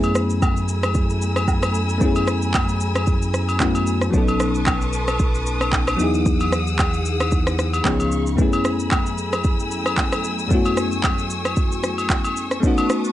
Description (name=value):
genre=amapiano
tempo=113 BPM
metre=4/4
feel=swing 55% on 16ths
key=F# dorian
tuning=A4 = 436 Hz
part: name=bell-like FM electric piano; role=accompaniment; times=0.0-13.1 s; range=F#2 to A4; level=-23 LUFS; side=left 2 dB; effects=chorus
part: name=warm studio string section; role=sustained chords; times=0.0-13.1 s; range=F#3 to E6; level=-28 LUFS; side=left 1 dB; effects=none
part: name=sub bass with octave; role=bass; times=0.0-8.4 s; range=B1 to F#2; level=-23 LUFS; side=equal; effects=none
part: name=afro-pop drum kit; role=drums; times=0.0-13.1 s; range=handclaps, kick drum, rim click, shaker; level=-22 LUFS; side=equal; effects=none
part: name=agogo bells and woodblock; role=percussion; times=0.0-12.9 s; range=none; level=-26 LUFS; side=equal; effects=none
room=digital ambience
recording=dry, gritty hardware recording, nothing above 10.7 kHz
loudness=-18 LUFS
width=side -13 dB against mid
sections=0.0-13.1 A section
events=none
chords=0.0 F#m11; 4.1 B9; 6.0 Emaj9; 7.9 C#7; 8.4 F#m11